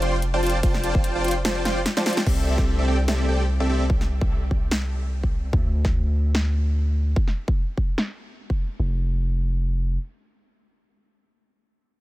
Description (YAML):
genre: future bass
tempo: 147 BPM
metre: 4/4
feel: swing 55% on 16ths, half-time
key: unclear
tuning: A4 = 440 Hz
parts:
  - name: dense compressed supersaw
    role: riff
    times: 0.0-3.8 s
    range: C4 to C6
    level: -25 LUFS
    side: equal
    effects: vintage 12-bit sampler grit, sidechain pumping, dub echo
  - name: long sustained 808-style bass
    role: bass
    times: 0.0-10.0 s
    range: F1 to D2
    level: -23 LUFS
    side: equal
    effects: sidechain pumping
  - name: big-room dance drum kit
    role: drums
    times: 0.0-8.1 s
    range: crash cymbal, hi-hat, ride cymbal, snare drum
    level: -28 LUFS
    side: equal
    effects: low-pass filter on snare, low-pass filter on hats, low-pass filter on cymbals
  - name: electronic kick drum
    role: drums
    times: 0.6-8.6 s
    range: none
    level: -22 LUFS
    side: equal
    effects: none
room: little or no reverb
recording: none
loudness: -20 LUFS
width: side -17 dB against mid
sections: 0.0-2.3 A section; 2.3-8.8 B section; 8.8-12.0 C section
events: drop 0.0-2.3; drum fill 1.7-2.3; filter sweep on drum 2.3-8.8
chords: 0.0 F69; 2.3 C69; 5.5 N.C.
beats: 0.22 | 0.63 1.04 1.45 1.86 | 2.27 2.67 3.08 3.49 | 3.90 4.31 4.71 5.12 | 5.53 5.94 6.35 6.75 | 7.16 7.57 7.98 8.39 | 8.80 9.20 9.61